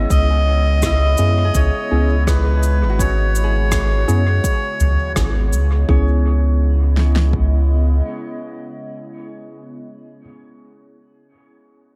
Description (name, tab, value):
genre	ambient dub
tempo	83 BPM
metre	4/4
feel	straight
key	C# minor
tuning	A4 = 444 Hz
part	warbly tape-like pad	sustained chords	0.0-9.5 s	C#3 to D#5	-32 LUFS	equal	chorus, built-in reverb, phaser
part	concert harp	arpeggios	0.0-10.2 s	E4 to D#5	-33 LUFS	equal	dub echo
part	tine electric piano	stabs	0.0-10.2 s	B3 to G#4	-30 LUFS	equal	dub echo
part	soft dub sub bass	bass	0.0-8.0 s	G#1 to F#2	-18 LUFS	equal	none
part	melodica	melody	0.1-5.1 s	B4 to D#5	-25 LUFS	equal	dub echo
part	deep house drum kit	drums	0.1-7.5 s	kick drum, snare drum	-23 LUFS	equal	none
part	soft-mallet drum kit	drums	0.1-5.7 s	cabasa, rim click, toms	-30 LUFS	equal	dub echo
room	light reverb, small room reverb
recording	none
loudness	-17 LUFS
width	mono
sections	0.0-5.9 A section; 5.9-8.8 B section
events	none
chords	0.0 C#m7